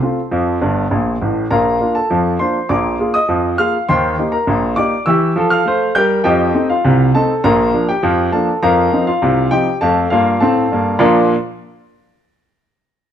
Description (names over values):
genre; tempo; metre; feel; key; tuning
ragtime piano; 101 BPM; 2/4; straight; Bb major; A4 = 440 Hz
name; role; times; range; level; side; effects
warm grand piano; solo; 0.0-11.3 s; G1 to G6; -13 LUFS; equal; none
room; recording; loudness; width
moderate stone room reverb, RT60 1.1 s; band playing live in one room; -13 LUFS; side -9 dB against mid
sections
0.0-11.0 A section; 11.0-12.2 B section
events
grand piano fill 0.6-1.5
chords
0.0 F; 1.5 Bb; 2.7 Bb7; 3.9 Eb; 5.1 Edim7; 6.3 F7; 7.4 Bb; 8.6 F7sus4; 9.8 F; 11.0 Bb